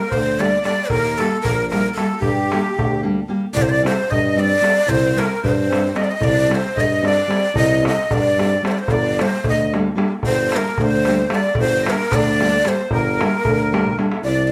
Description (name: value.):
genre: balkan folk, Balkan wedding band.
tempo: 225 BPM (eighths).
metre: 5/8.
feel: straight.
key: G minor.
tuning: A4 = 440 Hz.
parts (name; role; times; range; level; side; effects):
breathy ney; melody; 0.0-14.5 s; G4 to Eb5; -23 LUFS; equal; none.
accordion; second line; 0.0-14.5 s; G4 to Eb5; -27 LUFS; equal; light tremolo tuning.
warm tuba; bass; 0.1-14.5 s; G1 to G2; -24 LUFS; equal; none.
darbuka; percussion; 0.1-14.2 s; none; -26 LUFS; equal; none.
nylon-string guitar; accompaniment; 0.4-14.1 s; G3 to G4; -24 LUFS; equal; none.
room: moderate studio reverb, RT60 0.8 s.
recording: band playing live in one room.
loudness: -18 LUFS.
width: mono.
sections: 0.0-3.6 A section; 3.6-14.3 B section.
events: drum fill 13.8-14.3.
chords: 0.0 Gm; 0.9 Eb; 2.2 Gm; 3.6 Cm; 8.9 Gm.